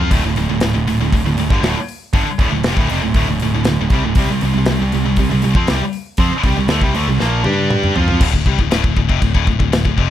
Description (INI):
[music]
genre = heavy metal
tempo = 118 BPM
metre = 4/4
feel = straight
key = D minor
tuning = A4 = 440 Hz
[part]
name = heavy high-gain guitar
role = riff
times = 0.0-10.1 s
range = D2 to G4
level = -21 LUFS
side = left 12 dB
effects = distortion
[part]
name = scooped high-gain guitar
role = riff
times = 0.0-8.2 s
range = D2 to G4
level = -19 LUFS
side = right 8 dB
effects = distortion
[part]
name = picked electric bass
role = bass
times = 0.0-10.1 s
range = D1 to G2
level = -19 LUFS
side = equal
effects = none
[part]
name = modern studio drum kit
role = drums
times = 0.1-10.1 s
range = crash cymbal, hi-hat, kick drum, snare drum, toms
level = -18 LUFS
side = equal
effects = none
[sound]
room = light reverb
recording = dark, warm production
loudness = -14 LUFS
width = side -11 dB against mid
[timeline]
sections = 0.0-8.2 A section; 8.2-10.1 B section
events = drum fill 7.2-8.2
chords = 0.1 Dm; 4.2 C5; 7.5 G5; 8.0 F5; 8.2 Dm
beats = | 0.11 0.62 1.12 1.63 | 2.14 2.65 3.15 3.66 | 4.16 4.67 5.18 5.68 | 6.19 6.70 7.20 7.71 | 8.21 8.72 9.22 9.73